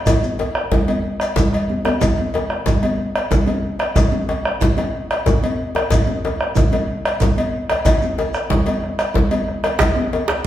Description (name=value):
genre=west african traditional, West African drum ensemble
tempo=123 BPM (dotted quarters)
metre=12/8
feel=straight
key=none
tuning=none
part: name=bombo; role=percussion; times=0.1-10.4 s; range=none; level=-21 LUFS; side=equal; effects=none
part: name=congas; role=percussion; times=0.1-10.5 s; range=none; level=-23 LUFS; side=equal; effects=none
part: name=cowbell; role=percussion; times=0.1-10.3 s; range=none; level=-24 LUFS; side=left 1 dB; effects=none
part: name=djembe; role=percussion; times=0.1-10.3 s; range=none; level=-23 LUFS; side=left 1 dB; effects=none
part: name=shekere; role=percussion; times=0.1-10.0 s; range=none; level=-26 LUFS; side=left 1 dB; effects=none
part: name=djembe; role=percussion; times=9.8-10.4 s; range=none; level=-21 LUFS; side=right 3 dB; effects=none
room=wet large studio reverb, RT60 1.3 s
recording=band playing live in one room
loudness=-16 LUFS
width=side -12 dB against mid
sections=0.0-9.8 A section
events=drum fill 1.5-2.0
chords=none